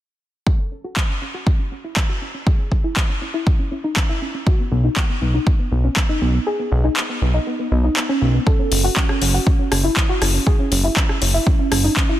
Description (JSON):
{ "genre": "progressive house", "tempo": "120 BPM", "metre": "4/4", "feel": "straight", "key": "unclear", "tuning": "A4 = 440 Hz", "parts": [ { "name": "soft round pluck", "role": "arpeggios", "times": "0.5-12.2 s", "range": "B3 to A4", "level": "-23 LUFS", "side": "equal", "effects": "lush chorus, sidechain pumping, digital delay" }, { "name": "electronic kick drum", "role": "drums", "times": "0.5-12.1 s", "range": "none", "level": "-18 LUFS", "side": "equal", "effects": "overdrive, studio reverb" }, { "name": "house drum kit", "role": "drums", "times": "1.0-12.1 s", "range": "handclaps, hi-hat, rim click", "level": "-24 LUFS", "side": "left 1 dB", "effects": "overdrive, studio reverb, sidechain pumping on hats" }, { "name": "fat analog bass", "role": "bass", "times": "4.7-11.9 s", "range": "F#1 to B1", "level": "-17 LUFS", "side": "equal", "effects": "sidechain pumping" } ], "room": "light reverb", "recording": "dense, heavily limited modern master", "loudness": "-16 LUFS", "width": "side -13 dB against mid", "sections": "0.5-8.5 A section; 8.5-12.2 B section", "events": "filter sweep on synth pluck 0.5-8.5; kick drops out 6.5-8.5", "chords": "0.5 N.C.; 4.5 B; 8.5 F#5" }